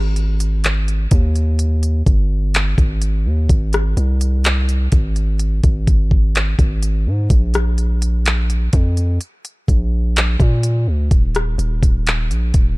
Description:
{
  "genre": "contemporary R&B",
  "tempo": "63 BPM",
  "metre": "4/4",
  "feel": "straight",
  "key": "unclear",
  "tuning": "A4 = 439 Hz",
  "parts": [
    { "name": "long sustained 808-style bass", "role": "bass", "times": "0.0-12.8 s", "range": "Eb1 to Bb2", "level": "-17 LUFS", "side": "equal", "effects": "none" },
    { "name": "smooth R&B drum kit", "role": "drums", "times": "0.2-12.8 s", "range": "handclaps, hi-hat, kick drum, rim click", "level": "-16 LUFS", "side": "equal", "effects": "none" }
  ],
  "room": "little or no reverb",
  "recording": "dark, warm production",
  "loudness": "-14 LUFS",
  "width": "side -23 dB against mid",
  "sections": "0.0-12.8 A section",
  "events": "none",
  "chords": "none",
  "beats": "0.64 1.59 2.54 | 3.49 4.45 5.40 6.35 | 7.30 8.25 9.21 10.16 | 11.11 12.06"
}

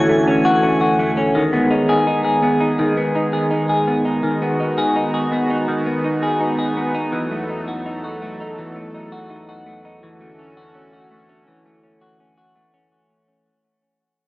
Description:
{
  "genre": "dream pop",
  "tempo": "83 BPM",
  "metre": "4/4",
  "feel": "straight",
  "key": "unclear",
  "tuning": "A4 = 440 Hz",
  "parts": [
    { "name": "warm analog pad", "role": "sustained chords", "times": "0.0-12.9 s", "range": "E2 to A4", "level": "-22 LUFS", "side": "right 1 dB", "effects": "chorus" },
    { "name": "semi-hollow electric guitar", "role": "arpeggios", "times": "0.0-13.5 s", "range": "D#3 to G#4", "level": "-18 LUFS", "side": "left 1 dB", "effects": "wide subtle chorus, analog delay" }
  ],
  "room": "wet echo chamber reverb, RT60 2.2 s",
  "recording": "echo-heavy mix, small speaker sound",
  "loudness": "-16 LUFS",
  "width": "side -19 dB against mid",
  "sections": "0.0-12.9 A section",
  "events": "fade-out 0.0-12.9",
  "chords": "0.0 Dmaj7/E; 1.3 B6/D#; 7.1 B7/E; 10.0 Dmaj7/E",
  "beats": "0.62 | 1.35 2.07 2.79 3.52 | 4.24 4.96 5.68 6.41 | 7.13 7.85 8.57 9.30 | 10.02 10.74 11.47 12.19"
}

